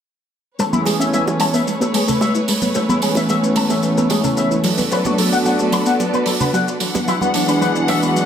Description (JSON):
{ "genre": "nu-disco, nu disco", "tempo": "111 BPM", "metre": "4/4", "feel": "straight", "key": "A major", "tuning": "A4 = 440 Hz", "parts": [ { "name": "warm analog pad", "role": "accompaniment", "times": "0.6-8.3 s", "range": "E3 to G#5", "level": "-21 LUFS", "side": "equal", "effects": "chorus, dub echo" }, { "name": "warm studio string section", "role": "sustained chords", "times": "0.6-8.3 s", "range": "E3 to F#5", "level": "-22 LUFS", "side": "equal", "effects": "none" }, { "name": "wide unison pluck", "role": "arpeggios", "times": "0.6-8.3 s", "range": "F#3 to F#4", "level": "-22 LUFS", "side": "equal", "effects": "dub echo" }, { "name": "electric guitar with an envelope filter", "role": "riff", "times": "0.6-8.1 s", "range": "B3 to B5", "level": "-22 LUFS", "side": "left 3 dB", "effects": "analog chorus, low-pass filter, dub echo" }, { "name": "shaker and hi-hat", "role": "drums", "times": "0.6-8.3 s", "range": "none", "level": "-25 LUFS", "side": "right 3 dB", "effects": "none" }, { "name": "tambourine, congas and bongos", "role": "percussion", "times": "0.6-8.3 s", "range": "none", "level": "-26 LUFS", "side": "right 3 dB", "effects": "dub echo" } ], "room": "wet spring reverb, RT60 2.3 s", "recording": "echo-heavy mix", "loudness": "-15 LUFS", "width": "side -8 dB against mid", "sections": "0.6-8.3 A section", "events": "filter sweep on synth arpeggio sound 0.6-8.3", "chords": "0.6 Amaj9; 4.6 Bm7; 6.8 E9", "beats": "| 0.59 1.13 1.67 2.21 | 2.75 3.29 3.83 4.38 | 4.92 5.46 6.00 6.54 | 7.08 7.62 8.16" }